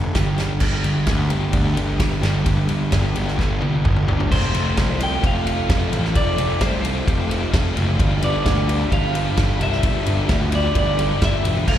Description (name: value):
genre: indie rock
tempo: 130 BPM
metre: 4/4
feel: straight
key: unclear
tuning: A4 = 440 Hz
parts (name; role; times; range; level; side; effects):
- crunchy overdriven guitar; riff; 0.0-11.8 s; G2 to B4; -27 LUFS; left 9 dB; tremolo, slapback echo
- overdriven electric guitar; riff; 0.0-11.8 s; F2 to D4; -28 LUFS; right 6 dB; wide subtle chorus, slapback echo
- fuzz picked electric bass; bass; 0.0-11.8 s; E1 to D2; -21 LUFS; right 1 dB; overdrive
- loose indie drum kit; drums; 0.1-11.8 s; crash cymbal, hi-hat, kick drum, ride cymbal, snare drum, toms; -22 LUFS; equal; none
- electric guitar through a small old amp; melody; 4.3-11.8 s; C5 to G5; -25 LUFS; equal; spring reverb, slapback echo
- string machine, full ensemble; sustained chords; 4.3-11.8 s; F4 to D6; -34 LUFS; right 1 dB; none
room: small room ambience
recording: live gig heard through the venue's PA, recital hall reverb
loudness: -17 LUFS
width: side -11 dB against mid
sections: 0.6-4.3 A section; 4.3-11.8 B section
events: drum fill 3.4-4.3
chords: 0.0 G; 4.3 F; 8.0 G7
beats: 0.16 | 0.62 1.08 1.54 2.01 | 2.47 2.93 3.39 3.85 | 4.31 4.78 5.24 5.70 | 6.16 6.62 7.08 7.54 | 8.00 8.46 8.92 9.38 | 9.84 10.30 10.76 11.22 | 11.68